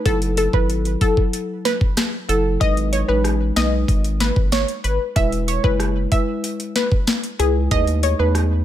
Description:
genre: dancehall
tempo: 94 BPM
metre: 4/4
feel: straight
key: F# dorian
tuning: A4 = 437 Hz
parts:
  - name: marimba with medium mallets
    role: accompaniment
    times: 0.0-8.4 s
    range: F#3 to B4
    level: -25 LUFS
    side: equal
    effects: none
  - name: analog pluck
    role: melody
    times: 0.1-8.3 s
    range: G#4 to E5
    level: -23 LUFS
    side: left 1 dB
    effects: chorus, digital delay
  - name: round analog bass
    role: bass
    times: 0.1-8.6 s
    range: E1 to E2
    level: -21 LUFS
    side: equal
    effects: none
  - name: island pop drum kit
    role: drums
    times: 0.1-8.5 s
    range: hi-hat, kick drum, rim click, snare drum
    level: -20 LUFS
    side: equal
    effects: overdrive
room: digital ambience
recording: none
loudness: -17 LUFS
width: side -12 dB against mid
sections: 0.0-8.6 A section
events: none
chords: 0.1 F#m7; 2.6 G#m; 5.2 E; 7.7 B7/D#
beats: | 0.06 0.69 1.33 1.97 | 2.61 3.25 3.88 4.52 | 5.16 5.80 6.44 7.08 | 7.71 8.35

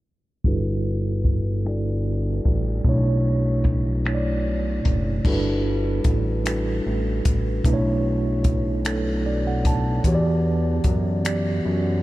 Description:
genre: slow six-eight R&B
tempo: 50 BPM (dotted quarters)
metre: 6/8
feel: straight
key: unclear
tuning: A4 = 439 Hz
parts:
  - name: mellow tine electric piano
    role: accompaniment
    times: 0.4-12.0 s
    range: B2 to A5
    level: -24 LUFS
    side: right 1 dB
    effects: medium stereo tremolo
  - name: fat analog bass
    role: bass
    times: 0.4-12.0 s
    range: F#1 to F#2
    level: -24 LUFS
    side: equal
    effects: none
  - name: compact cocktail drum kit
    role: drums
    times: 0.4-11.4 s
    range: crash cymbal, finger snaps, hi-hat, kick drum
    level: -24 LUFS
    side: equal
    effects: none
room: light reverb, small room ambience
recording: low-pass filter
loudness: -20 LUFS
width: side -17 dB against mid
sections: 0.4-5.2 A section; 5.2-12.0 B section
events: filter sweep 0.4-5.2; tine electric piano fill 8.8-10.0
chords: 0.4 Gmaj13; 2.8 Bm11; 5.2 Gmaj13; 7.6 Bm11; 10.0 Em9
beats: | 0.44 1.64 | 2.84 4.04 | 5.24 6.44 | 7.64 8.84 | 10.04 11.24

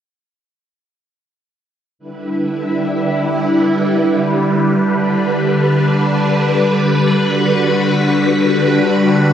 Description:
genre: ambient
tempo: free time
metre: none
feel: none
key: unclear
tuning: A4 = 437 Hz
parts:
  - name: phased string machine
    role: sustained chords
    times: 2.0-9.3 s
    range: D3 to B4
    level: -12 LUFS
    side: equal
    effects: ensemble chorus, phaser
room: wet cathedral reverb, RT60 6.2 s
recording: in a vast, echoing space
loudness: -12 LUFS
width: side -9 dB against mid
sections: 2.0-9.3 A section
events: none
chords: 2.0 Em7; 7.2 Gmaj7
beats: free time

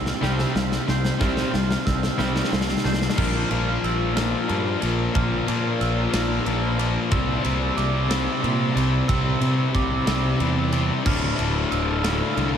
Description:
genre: post-rock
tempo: 61 BPM (dotted quarters)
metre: 6/8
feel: straight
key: unclear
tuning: A4 = 438 Hz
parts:
  - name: ethereal airy pad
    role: sustained chords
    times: 0.0-12.6 s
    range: C3 to A5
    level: -31 LUFS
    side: right 3 dB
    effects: none
  - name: glockenspiel with rubber mallets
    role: arpeggios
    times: 0.0-12.6 s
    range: D6 to F6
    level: -31 LUFS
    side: right 8 dB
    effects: diffuse ambient delay
  - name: twangy electric guitar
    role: arpeggios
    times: 0.0-3.2 s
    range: C3 to C5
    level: -35 LUFS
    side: equal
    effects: phaser, diffuse ambient delay
  - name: fuzz picked electric bass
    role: bass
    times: 0.0-12.6 s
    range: D1 to C3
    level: -26 LUFS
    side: right 1 dB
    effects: overdrive
  - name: big rock drum kit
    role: drums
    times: 0.1-12.5 s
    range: crash cymbal, kick drum, ride cymbal, snare drum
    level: -27 LUFS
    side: right 1 dB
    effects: none
  - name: distorted electric guitar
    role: riff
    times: 0.2-12.6 s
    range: D2 to C4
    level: -24 LUFS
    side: left 5 dB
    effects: overdrive
  - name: overdriven semi-hollow guitar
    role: riff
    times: 0.2-3.1 s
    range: C3 to C4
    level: -32 LUFS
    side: right 7 dB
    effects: none
room: moderate huge ambient reverb, RT60 7.4 s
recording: dreamy mix soaked in reverb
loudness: -20 LUFS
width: side -8 dB against mid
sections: 0.0-3.2 A section; 3.2-12.6 B section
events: build-up 0.0-3.2; drum fill 0.0-3.2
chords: 0.0 Csus4; 3.2 Bbadd9; 7.1 C; 11.1 Dm7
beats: 0.22 | 1.21 2.19 | 3.18 4.17 | 5.15 6.13 | 7.12 8.10 | 9.09 10.07 | 11.06 12.04

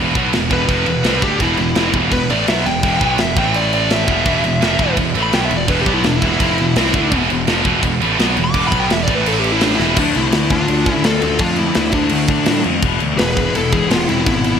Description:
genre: heavy metal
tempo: 168 BPM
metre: 4/4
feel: straight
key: unclear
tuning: A4 = 440 Hz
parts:
  - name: heavy high-gain guitar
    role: riff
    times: 0.0-10.0 s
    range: E2 to D4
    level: -19 LUFS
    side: right 11 dB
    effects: distortion
  - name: scooped high-gain guitar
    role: riff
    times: 0.0-14.6 s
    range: E2 to D4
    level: -21 LUFS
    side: left 10 dB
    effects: distortion
  - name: fuzz picked electric bass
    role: bass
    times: 0.0-14.6 s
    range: E1 to A2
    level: -20 LUFS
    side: equal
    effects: overdrive
  - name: tight metal drum kit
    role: drums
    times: 0.2-14.5 s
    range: crash cymbal, kick drum, snare drum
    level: -20 LUFS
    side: equal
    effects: gated reverb
  - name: smooth overdriven lead guitar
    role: melody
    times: 0.5-14.6 s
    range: D4 to D6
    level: -20 LUFS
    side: left 1 dB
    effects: ping-pong delay
  - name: high-gain lead guitar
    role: second line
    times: 10.0-14.6 s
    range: A3 to G#4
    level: -24 LUFS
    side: right 3 dB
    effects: distortion
room: moderate lush hall reverb, RT60 1.9 s, small room ambience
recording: bright 1980s-style digital production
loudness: -13 LUFS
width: side -7 dB against mid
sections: 0.0-10.0 A section; 10.0-14.6 B section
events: lead electric guitar solo 0.0-10.0; drum fill 9.8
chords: 0.0 E5; 3.4 A5; 4.1 E5; 9.1 A5; 9.8 E5; 10.0 Dm; 12.8 E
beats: 0.34 0.69 1.05 | 1.41 1.76 2.12 2.48 | 2.84 3.19 3.55 3.91 | 4.26 4.62 4.98 5.33 | 5.69 6.05 6.41 6.76 | 7.12 7.48 7.83 8.19 | 8.55 8.90 9.26 9.62 | 9.98 10.33 10.69 11.05 | 11.41 11.76 12.12 12.48 | 12.84 13.19 13.55 13.91 | 14.27

